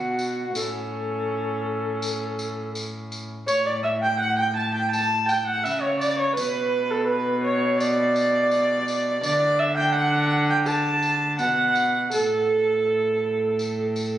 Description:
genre	classical, renaissance-style consort dance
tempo	83 BPM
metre	4/4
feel	straight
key	A mixolydian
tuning	A4 = 440 Hz
part	alto recorder	melody	0.0-14.2 s	A4 to A5	-28 LUFS	left 2 dB	none
part	warm viola	second line	0.0-14.2 s	C#4 to A5	-23 LUFS	right 2 dB	none
part	rich cello	bass	0.0-14.2 s	A2 to D3	-27 LUFS	equal	none
part	tambourine	percussion	0.2-14.2 s	none	-36 LUFS	left 2 dB	none
room	moderate recital hall reverb, RT60 1.4 s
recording	recorded on a phone in the room, club reverb, compression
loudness	-21 LUFS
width	side -12 dB against mid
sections	0.0-3.5 A section; 3.5-14.2 A section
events	none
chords	0.0 N.C.; 0.6 A; 6.4 Bm; 9.2 D; 12.1 N.C.

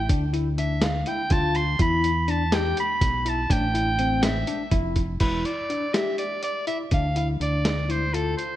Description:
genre	progressive instrumental, band music in an uneven meter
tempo	246 BPM (eighths)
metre	7/8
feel	straight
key	E phrygian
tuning	A4 = 439 Hz
part	clear soprano saxophone	melody	0.0-8.6 s	A4 to C6	-27 LUFS	right 1 dB	none
part	fingered electric bass	bass	0.0-8.3 s	E1 to E2	-26 LUFS	equal	none
part	tine electric piano	arpeggios	0.1-8.4 s	C4 to G4	-29 LUFS	left 3 dB	phaser
part	lo-fi sampler-style drum kit	drums	0.1-8.5 s	crash cymbal, hi-hat, kick drum, snare drum	-26 LUFS	equal	none
room	moderate concert hall reverb, RT60 1.8 s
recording	none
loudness	-21 LUFS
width	side -13 dB against mid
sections	0.0-5.2 A section; 5.2-8.6 B section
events	soprano saxophone solo 0.0-5.2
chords	0.1 Dm; 1.8 Em; 3.5 Am7; 5.2 Em7; 6.9 Dm

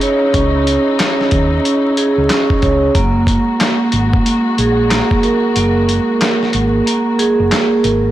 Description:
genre	hip hop, boom-bap hip-hop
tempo	92 BPM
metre	4/4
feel	swing 62% on 16ths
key	unclear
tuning	A4 = 439 Hz
part	vibraphone with medium mallets	accompaniment	0.0-8.1 s	A#3 to C#5	-14 LUFS	right 2 dB	cassette tape, high-pass filter, low-pass filter
part	dark studio string section	sustained chords	0.0-8.1 s	G#3 to F#4	-23 LUFS	left 3 dB	high-pass filter, low-pass filter
part	dusty soul sampler-style drum kit	drums	0.0-8.0 s	handclaps, hi-hat, kick drum, snare drum	-17 LUFS	equal	overdrive
part	hollow-body short-scale fingered electric bass	bass	0.3-8.1 s	F#1 to D#2	-18 LUFS	equal	transformer saturation
room	light reverb, digital ambience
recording	blown-out, overdriven recording, vinyl crackle, overdrive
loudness	-12 LUFS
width	side -13 dB against mid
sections	0.0-8.1 A section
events	kick muted 5.6-8.1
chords	0.0 C#madd9; 3.0 F#add9

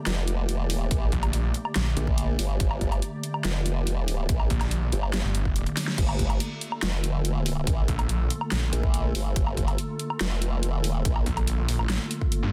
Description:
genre	heavy wobble dubstep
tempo	142 BPM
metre	4/4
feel	half-time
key	G minor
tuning	A4 = 442 Hz
part	evolving wavetable pad	sustained chords	0.0-12.5 s	D3 to D5	-36 LUFS	equal	ensemble chorus, built-in reverb, sidechain pumping
part	formant-sweep wobble bass	bass	0.1-11.2 s	F1 to Bb1	-29 LUFS	equal	chorus, overdrive
part	dubstep drum kit	drums	0.1-12.4 s	crash cymbal, hi-hat, snare drum, woodblock	-34 LUFS	equal	studio reverb
part	electronic kick drum	drums	0.9-12.3 s	none	-29 LUFS	equal	studio reverb
part	snarling distorted saw bass	bass	1.1-1.9, 4.5-8.7, 11.3-12.5 s	G1 to G2	-28 LUFS	equal	distortion, overdrive
room	digital ambience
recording	dense, heavily limited modern master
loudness	-26 LUFS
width	mono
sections	0.0-12.5 A section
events	drum fill 5.8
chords	0.0 Gmadd9

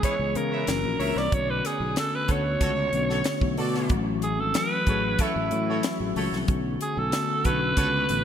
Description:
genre	polished 1980s jazz-funk pop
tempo	93 BPM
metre	4/4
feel	straight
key	B dorian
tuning	A4 = 440 Hz
part	growling alto saxophone	melody	0.0-8.2 s	E4 to D5	-27 LUFS	right 2 dB	none
part	clear horn section	second line	0.0-7.9 s	E4 to E5	-35 LUFS	right 1 dB	tube saturation, ping-pong delay
part	mellow tine electric piano	accompaniment	0.0-8.2 s	D3 to G#4	-29 LUFS	left 4 dB	medium stereo tremolo, analog chorus
part	tight funk drum kit	drums	0.0-8.2 s	hi-hat, kick drum, snare drum	-28 LUFS	equal	none
part	sustaining fretless electric bass	bass	0.2-8.2 s	F#1 to C#3	-30 LUFS	equal	none
room	moderate lush hall reverb, RT60 2.5 s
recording	bright 1980s-style digital production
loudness	-23 LUFS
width	side -9 dB against mid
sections	0.0-8.2 A section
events	none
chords	0.0 C#m7; 0.7 F#7b13; 1.3 Bm9; 3.9 A6; 6.5 Bm9

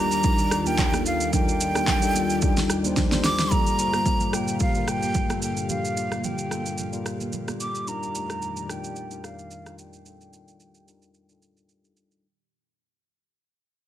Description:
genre	amapiano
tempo	110 BPM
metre	4/4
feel	swing 55% on 16ths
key	G minor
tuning	A4 = 438 Hz
part	breathy jazz flute	melody	0.0-11.7 s	F5 to D6	-28 LUFS	right 2 dB	low-pass filter, tape echo
part	mellow tine electric piano	accompaniment	0.0-12.3 s	G3 to C5	-29 LUFS	left 4 dB	low-pass filter
part	airy breathy pad	sustained chords	0.0-12.2 s	Eb2 to F5	-32 LUFS	equal	chorus, low-pass filter
part	deep house drum kit	drums	0.1-12.2 s	handclaps, kick drum, rim click, shaker, snare drum	-25 LUFS	right 1 dB	overdrive
part	congas	percussion	0.2-7.6 s	none	-34 LUFS	right 9 dB	none
room	light reverb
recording	none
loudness	-22 LUFS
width	side -12 dB against mid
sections	0.0-3.5 A section; 3.5-12.2 B section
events	drum fill 3.0-3.5; fade-out 3.5-12.2; filter sweep 3.5-12.2; break 11.2-12.2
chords	0.0 Ebmaj7; 3.5 Gm9; 7.9 F13sus4

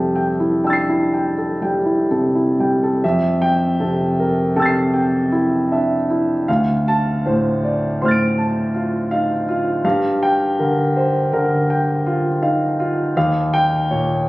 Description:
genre	classical, impressionist solo piano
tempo	53 BPM (dotted quarters)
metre	9/8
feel	uneven beats, rubato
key	F major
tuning	A4 = 439 Hz
part	warm concert grand piano	solo	0.0-14.3 s	D2 to D7	-16 LUFS	equal	none
room	wet recital hall reverb, RT60 1.5 s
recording	recorded on a phone in the room, club reverb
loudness	-16 LUFS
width	side -20 dB against mid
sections	0.0-3.0 A section; 3.0-14.3 B section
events	none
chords	0.0 Fmaj9; 6.5 Dm7; 9.8 Gm7; 13.2 Eb9

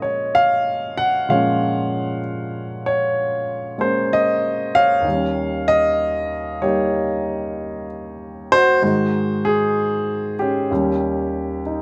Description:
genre	solo jazz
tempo	64 BPM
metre	4/4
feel	swing 66% on 8ths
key	unclear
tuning	A4 = 441 Hz
part	warm concert grand piano	solo	0.0-11.8 s	Eb2 to Gb5	-20 LUFS	equal	none
room	little or no reverb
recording	recorded outdoors, with no room sound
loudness	-20 LUFS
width	mono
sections	0.0-11.8 A section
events	none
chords	0.0 Bbm7; 5.1 Eb7; 8.8 Ab7; 10.7 Eb7

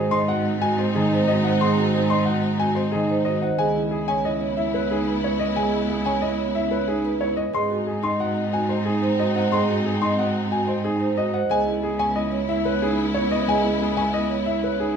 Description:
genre	classical, minimalist pattern music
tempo	182 BPM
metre	6/4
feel	straight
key	unclear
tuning	A4 = 439 Hz
part	warm concert grand piano	melody	0.0-15.0 s	G#4 to B#5	-26 LUFS	left 3 dB	none
part	concert harp	accompaniment	0.0-15.0 s	D#3 to D#4	-30 LUFS	left 4 dB	none
part	rich symphonic string section	sustained chords	0.0-15.0 s	B3 to E4	-29 LUFS	left 1 dB	none
part	vibraphone with medium mallets	arpeggios	0.0-15.0 s	D#4 to D#5	-26 LUFS	right 4 dB	none
part	rich cello	bass	0.0-15.0 s	C#2 to G#2	-25 LUFS	right 3 dB	none
room	wet stone room reverb, RT60 1.1 s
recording	none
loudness	-20 LUFS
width	side -7 dB against mid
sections	0.0-15.0 A section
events	none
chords	0.0 G#; 3.6 C#m7; 7.5 G#; 11.5 C#m7

